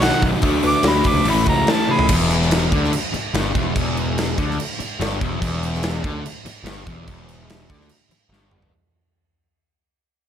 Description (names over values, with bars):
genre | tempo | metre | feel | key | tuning
blues rock power trio and southern rock | 145 BPM | 4/4 | straight | unclear | A4 = 442 Hz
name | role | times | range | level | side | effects
clear harmonica | melody | 0.0-2.1 s | F#5 to D6 | -21 LUFS | right 1 dB | overdrive, tape echo
lightly driven lead guitar | second line | 0.0-2.1 s | D#4 to B4 | -29 LUFS | right 4 dB | none
sludgy distorted guitar | riff | 0.0-8.7 s | E2 to F#4 | -22 LUFS | left 2 dB | overdrive
fuzz picked electric bass | bass | 0.0-8.7 s | E1 to D2 | -24 LUFS | equal | overdrive
big rock drum kit | drums | 0.0-8.7 s | crash cymbal, hi-hat, kick drum, snare drum, toms | -22 LUFS | equal | none
room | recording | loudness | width
light reverb | none | -17 LUFS | side -9 dB against mid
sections
0.0-2.1 A section; 2.1-8.7 B section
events
drum fill 1.9, 8.3-8.7; fade-out 2.1-8.7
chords
0.4 D; 1.3 A; 2.1 Em7